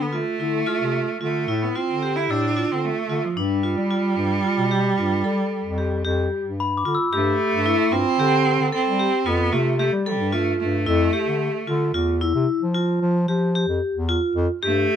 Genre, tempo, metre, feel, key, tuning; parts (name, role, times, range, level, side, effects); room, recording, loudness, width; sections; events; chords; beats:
contemporary instrumental, chamber music in an uneven meter; 112 BPM; 7/4; straight; G mixolydian; A4 = 440 Hz
clear cello; melody; 0.0-15.0 s; F3 to E4; -23 LUFS; right 5 dB
mellow bass clarinet; bass; 0.0-14.9 s; E2 to G3; -24 LUFS; left 1 dB
vibraphone with hard mallets; arpeggios; 0.1-15.0 s; D4 to A4; -24 LUFS; left 1 dB
glockenspiel with hard plastic mallets; texture; 0.7-7.7 s; B5 to F6; -29 LUFS; left 5 dB
light reverb; close, detailed microphones; -19 LUFS; side -9 dB against mid
0.0-7.1 A section; 7.1-15.0 B section
0.0 Dm; 3.4 G7; 7.1 G9sus4; 10.9 Fmaj9
0.13 0.67 1.21 1.75 2.29 2.83 | 3.37 3.90 4.44 4.98 5.51 6.05 6.59 | 7.12 7.66 8.19 8.73 9.27 9.80 10.34 | 10.87 11.41 11.94 12.48 13.02 13.55 14.09 | 14.63